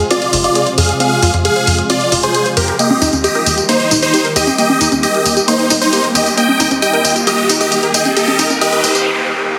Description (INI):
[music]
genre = uplifting trance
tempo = 134 BPM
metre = 4/4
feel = straight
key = unclear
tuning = A4 = 444 Hz
[part]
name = unison pluck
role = arpeggios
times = 0.0-9.0 s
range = Bb3 to C5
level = -22 LUFS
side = equal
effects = digital delay
[part]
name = tight sequencer bass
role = bass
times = 0.0-9.0 s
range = Eb1 to F2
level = -22 LUFS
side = equal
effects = none
[part]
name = big supersaw lead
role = melody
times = 0.1-8.9 s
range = Eb4 to G5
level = -17 LUFS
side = equal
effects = phaser, digital delay
[part]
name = electronic hi-hat, tambourine and congas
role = drums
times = 0.1-9.0 s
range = none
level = -19 LUFS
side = equal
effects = none
[part]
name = riser and noise sweep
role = sound effects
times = 5.8-9.6 s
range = none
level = -24 LUFS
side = equal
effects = none
[sound]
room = moderate huge ambient reverb, RT60 7.0 s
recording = dense, heavily limited modern master, high-pass filter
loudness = -13 LUFS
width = mono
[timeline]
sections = 0.0-9.6 A section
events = build-up 0.0-9.6; filter sweep on synth pluck 0.0-9.6; riser 5.8-9.1; noise sweep 8.2-9.6; break 9.1-9.6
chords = 0.0 Fm; 2.8 Eb